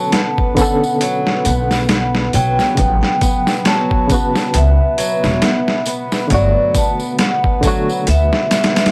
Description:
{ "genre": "trip hop", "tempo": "68 BPM", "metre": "4/4", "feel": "swing 57% on 16ths", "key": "unclear", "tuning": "A4 = 439 Hz", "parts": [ { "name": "vibraphone with hard mallets", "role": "melody", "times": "0.0-8.9 s", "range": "D5 to A5", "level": "-21 LUFS", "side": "equal", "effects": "tape echo" }, { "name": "barky reed electric piano", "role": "accompaniment", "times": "0.0-8.9 s", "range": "C#3 to A4", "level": "-24 LUFS", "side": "equal", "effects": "overdrive, fast tremolo" }, { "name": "deep dark ambient pad", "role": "sustained chords", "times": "0.0-8.9 s", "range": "B3 to B4", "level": "-27 LUFS", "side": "equal", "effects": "chorus, built-in reverb, vintage 12-bit sampler grit" }, { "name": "nylon-string guitar", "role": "arpeggios", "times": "0.0-8.9 s", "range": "F#3 to B3", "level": "-26 LUFS", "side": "equal", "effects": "tape echo" }, { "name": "boom bap sampler-style drum kit", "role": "drums", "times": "0.1-8.9 s", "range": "hi-hat, kick drum, snare drum", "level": "-20 LUFS", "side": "equal", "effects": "overdrive, studio reverb" }, { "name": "tambourine", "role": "percussion", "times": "0.1-8.9 s", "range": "none", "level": "-33 LUFS", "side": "equal", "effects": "none" }, { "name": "upright bass", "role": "bass", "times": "1.5-8.3 s", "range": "E1 to D2", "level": "-18 LUFS", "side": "equal", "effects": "none" } ], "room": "small room ambience", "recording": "dry, gritty hardware recording, transformer saturation, vinyl crackle", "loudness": "-15 LUFS", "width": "mono", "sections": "0.0-8.9 A section", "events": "none", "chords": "0.0 Bm9; 2.8 A13; 6.3 E9sus4", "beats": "0.13 1.01 1.90 | 2.78 3.66 4.54 5.42 | 6.31 7.19 8.07" }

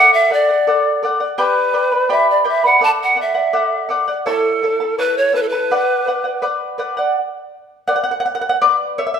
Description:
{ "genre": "andean folk, Andean ensemble", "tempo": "83 BPM", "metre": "2/4", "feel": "straight", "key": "B minor", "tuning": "A4 = 443 Hz", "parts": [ { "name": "mellow pan flute", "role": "melody", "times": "0.0-6.4 s", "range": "A4 to A5", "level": "-15 LUFS", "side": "right 1 dB", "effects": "none" }, { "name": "charango", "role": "accompaniment", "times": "0.0-9.2 s", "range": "E4 to B5", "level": "-17 LUFS", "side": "left 1 dB", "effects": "none" } ], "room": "moderate scoring stage reverb, RT60 1.5 s", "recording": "minimal, uncompressed stereo recording", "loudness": "-14 LUFS", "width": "side -7 dB against mid", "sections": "0.0-7.2 A section; 7.2-9.2 B section", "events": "charango solo 7.2-9.2", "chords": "0.0 D; 1.4 G; 2.8 D; 4.3 A; 5.7 Bm", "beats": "0.67 | 1.39 2.11 | 2.83 3.55 | 4.27 4.99 | 5.71 6.43 | 7.16 7.88 | 8.60" }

